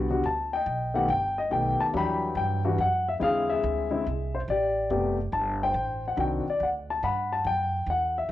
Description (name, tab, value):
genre	jazz piano trio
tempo	141 BPM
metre	3/4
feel	swing 67% on 8ths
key	G major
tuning	A4 = 439 Hz
part	warm grand piano	melody	0.0-8.3 s	C3 to B5	-25 LUFS	left 2 dB	cassette tape
part	upright bass	bass	0.0-8.3 s	F#1 to G2	-32 LUFS	right 3 dB	none
room	wet studio reverb, RT60 0.6 s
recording	home recording on cassette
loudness	-24 LUFS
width	side -13 dB against mid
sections	0.0-8.3 A section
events	none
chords	0.0 G5; 0.7 B7b13; 1.9 Em9; 3.2 Eaug7; 4.5 Am9; 5.8 D7b9; 7.0 Gmaj7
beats	0.24 | 0.66 1.08 1.51 | 1.93 2.36 2.78 | 3.21 3.63 4.05 | 4.48 4.90 5.33 | 5.75 6.18 6.60 | 7.03 7.45 7.88 | 8.30